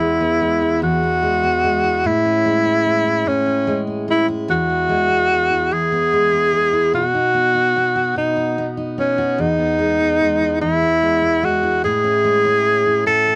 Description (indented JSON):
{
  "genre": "pop",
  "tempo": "49 BPM (dotted quarters)",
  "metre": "6/8",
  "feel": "straight",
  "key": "E major",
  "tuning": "A4 = 440 Hz",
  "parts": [
    { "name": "breathy tenor saxophone", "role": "melody", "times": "0.0-13.4 s", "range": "C#4 to A4", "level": "-18 LUFS", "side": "equal", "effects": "cassette tape" },
    { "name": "picked steel-string acoustic guitar", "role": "accompaniment", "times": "0.0-13.4 s", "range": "E2 to F#4", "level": "-25 LUFS", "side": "equal", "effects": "cassette tape" }
  ],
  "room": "moderate booth ambience, RT60 0.2 s",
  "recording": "home recording on cassette",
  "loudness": "-17 LUFS",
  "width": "mono",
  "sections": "0.0-13.4 A section",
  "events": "none",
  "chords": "0.0 E; 2.0 Amaj7; 4.5 E; 6.9 B; 9.4 E; 11.8 Amaj7",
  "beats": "0.82 | 2.04 3.27 | 4.49 5.72 | 6.94 8.16 | 9.39 10.61 | 11.83 13.06"
}